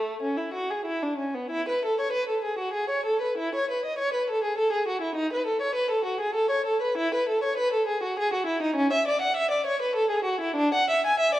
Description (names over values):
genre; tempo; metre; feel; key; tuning
classical, baroque-style suite movement for unaccompanied violin; 99 BPM; 3/4; rubato; E major; A4 = 441 Hz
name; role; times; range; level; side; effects
warm violin; solo; 0.0-11.4 s; A3 to G#5; -24 LUFS; equal; none
room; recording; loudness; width
wet recital hall reverb, RT60 1.4 s; dark, warm production; -24 LUFS; side -14 dB against mid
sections
0.0-1.5 A section; 1.5-11.4 A section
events
none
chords
none